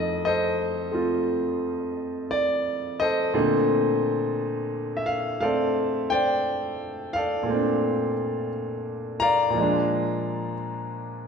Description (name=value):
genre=solo jazz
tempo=58 BPM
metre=4/4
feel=swing 66% on 8ths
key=Bb major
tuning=A4 = 439 Hz
part: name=clear grand piano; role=solo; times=0.0-11.3 s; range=F2 to Bb5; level=-23 LUFS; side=equal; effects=none
room=wet scoring stage reverb, RT60 1.7 s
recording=recorded in a church or concert hall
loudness=-23 LUFS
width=side -6 dB against mid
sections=0.0-11.3 A section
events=none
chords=0.0 F7; 3.3 Bbmaj9; 9.5 Bb7